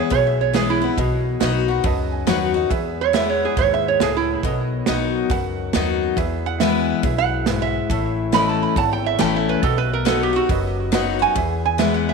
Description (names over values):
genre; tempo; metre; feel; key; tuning
honky-tonk and classic country; 139 BPM; 4/4; swing 64% on 8ths; E major; A4 = 441 Hz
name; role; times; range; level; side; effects
lap resonator guitar; second line; 0.0-12.1 s; E4 to B5; -21 LUFS; right 9 dB; tape echo
bright concert grand piano; accompaniment; 0.0-12.1 s; F#4 to B5; -29 LUFS; right 12 dB; none
picked steel-string acoustic guitar; accompaniment; 0.0-12.1 s; E2 to F#4; -22 LUFS; left 12 dB; none
mellow French horn section; sustained chords; 0.0-12.1 s; B2 to G#4; -30 LUFS; left 2 dB; none
upright bass; bass; 0.1-12.1 s; F#1 to E2; -26 LUFS; equal; none
natural country drum kit; drums; 0.1-11.9 s; hi-hat, kick drum, snare drum; -25 LUFS; right 4 dB; none
room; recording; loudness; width
moderate echo chamber reverb, RT60 2.0 s, studio reverb; 1960s-style stereo with parts hard left and right; -17 LUFS; side -4 dB against mid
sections
0.0-12.1 A section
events
resonator guitar played with a steel bar solo 0.0-12.1; grand piano fill 1.4-2.7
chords
0.0 E; 1.0 B; 2.7 E; 4.4 B; 6.2 E; 7.9 A; 9.6 B; 11.4 E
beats
0.12 0.55 | 0.98 1.41 1.85 2.28 | 2.71 3.14 3.58 4.01 | 4.44 4.87 5.31 5.74 | 6.17 6.60 7.04 7.47 | 7.90 8.33 8.77 9.20 | 9.63 10.06 10.49 10.93 | 11.36 11.79